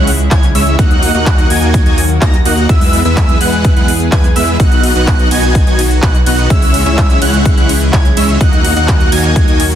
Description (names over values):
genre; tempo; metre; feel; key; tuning
EDM, festival progressive house; 126 BPM; 4/4; straight; unclear; A4 = 440 Hz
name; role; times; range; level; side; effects
lush unison pad; sustained chords; 0.0-9.8 s; C#3 to G#4; -21 LUFS; equal; chorus, sidechain pumping
wide unison lead; arpeggios; 0.0-9.6 s; E6 to A#6; -19 LUFS; right 1 dB; wide subtle chorus, sidechain pumping, digital delay
dense compressed supersaw; riff; 0.0-9.6 s; G#3 to A#5; -15 LUFS; equal; sidechain pumping, digital delay
wide detuned saw bass; bass; 0.0-9.8 s; B1 to E2; -15 LUFS; equal; chorus, sidechain pumping
big-room dance drum kit; drums; 0.1-9.8 s; handclaps, hi-hat, ride cymbal; -20 LUFS; equal; overdrive, small room reverb
electronic kick drum; drums; 0.3-9.5 s; none; -11 LUFS; equal; overdrive, small room reverb
room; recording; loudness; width
digital ambience; dense, heavily limited modern master; -8 LUFS; side -10 dB against mid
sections
0.0-9.8 A section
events
none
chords
0.0 C#m; 0.8 D#m; 2.7 E; 4.6 B; 6.5 C#m; 8.4 D#m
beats
0.31 | 0.79 1.26 1.74 2.22 | 2.69 3.17 3.65 4.12 | 4.60 5.07 5.55 6.03 | 6.50 6.98 7.46 7.93 | 8.41 8.88 9.36